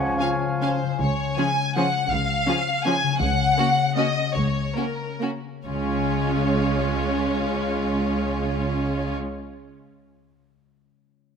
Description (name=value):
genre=classical, orchestral ballroom waltz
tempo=126-175 BPM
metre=3/4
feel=rubato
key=Db major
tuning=A4 = 440 Hz
part: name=dark clarinet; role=second line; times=0.0-1.0 s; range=F5 to Gb5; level=-32 LUFS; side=left 1 dB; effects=none
part: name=silver concert flute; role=second line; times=0.0-0.8 s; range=Ab5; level=-32 LUFS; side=equal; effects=none
part: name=warm oboe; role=second line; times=0.0-0.8 s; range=Db5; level=-33 LUFS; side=equal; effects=none
part: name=warm bassoon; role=accompaniment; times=0.0-0.8 s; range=F3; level=-32 LUFS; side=right 2 dB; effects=none
part: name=concert harp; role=arpeggios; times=0.0-9.9 s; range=Db3 to F5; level=-28 LUFS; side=left 14 dB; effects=none
part: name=rich chamber double bass section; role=bass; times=0.0-9.2 s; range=Db2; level=-29 LUFS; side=right 2 dB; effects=none
part: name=rich symphonic cello section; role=bass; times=0.0-9.2 s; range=Db3 to Db4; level=-32 LUFS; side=right 2 dB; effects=none
part: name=rich chamber violin section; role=melody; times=0.2-9.2 s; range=Bb4 to Ab5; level=-26 LUFS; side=left 2 dB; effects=none
part: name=clear chamber violin section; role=second line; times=0.2-9.2 s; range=Db4 to F5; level=-30 LUFS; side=equal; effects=none
part: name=rich chamber viola section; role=accompaniment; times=0.2-9.2 s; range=F3 to Db4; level=-27 LUFS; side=right 3 dB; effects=none
part: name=mellow French horn section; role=sustained chords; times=0.2-0.8 s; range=Db4 to F4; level=-34 LUFS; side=left 1 dB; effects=none
room=moderate scoring stage reverb, RT60 1.9 s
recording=close, detailed microphones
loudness=-21 LUFS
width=side -6 dB against mid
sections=0.0-1.0 A section; 1.0-5.7 B section; 5.7-8.4 C section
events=slowing down 2.7-5.7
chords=0.0 Db; 3.2 Gb/Db; 5.7 Db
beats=0.20 0.62 | 1.02 1.39 1.77 | 2.13 2.49 2.86 | 3.21 3.58 3.97 | 4.36 4.77 5.21 | 5.67 6.12 6.59 | 7.04 7.49 7.96